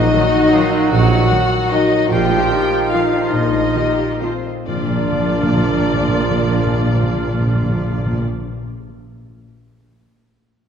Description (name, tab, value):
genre	classical, orchestral ballroom waltz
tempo	123-164 BPM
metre	3/4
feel	rubato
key	Bb major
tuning	A4 = 439 Hz
part	muted chamber violin section	melody	0.0-8.2 s	C5 to G5	-26 LUFS	left 5 dB	none
part	mellow clarinet	second line	0.0-8.2 s	D4 to Eb4	-25 LUFS	equal	none
part	muted chamber violin section	second line	0.0-8.2 s	C4 to G4	-28 LUFS	left 5 dB	none
part	silver concert flute	second line	0.0-8.2 s	C5 to G5	-25 LUFS	left 3 dB	none
part	warm oboe	second line	0.0-8.2 s	F4 to Gb4	-28 LUFS	right 2 dB	none
part	warm French horn section	sustained chords	0.0-8.2 s	C4 to G4	-22 LUFS	left 2 dB	none
part	warm trombone section	sustained chords	0.0-8.2 s	Bb2 to Gb3	-25 LUFS	right 4 dB	none
part	concert harp	arpeggios	0.0-8.6 s	Bb2 to Bb5	-26 LUFS	left 8 dB	none
part	mellow tuba	bass	0.0-8.2 s	Bb1	-25 LUFS	right 4 dB	none
part	muted chamber cello section	bass	0.0-8.2 s	Bb2 to G4	-25 LUFS	right 2 dB	none
part	muted chamber double bass section	bass	0.0-8.2 s	Bb1	-22 LUFS	right 3 dB	none
part	timpani	percussion	0.0-0.3, 4.7-8.3 s	Bb2	-23 LUFS	left 1 dB	none
part	muted chamber viola section	accompaniment	0.1-8.2 s	Eb3 to Bb3	-26 LUFS	right 1 dB	none
room	wet concert hall reverb, RT60 2.1 s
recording	dark, warm production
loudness	-14 LUFS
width	side -7 dB against mid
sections	0.0-4.7 A section; 4.7-7.5 B section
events	slowing down 1.5-4.7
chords	0.0 Ebm/Bb; 2.1 F7/Bb; 4.7 Bb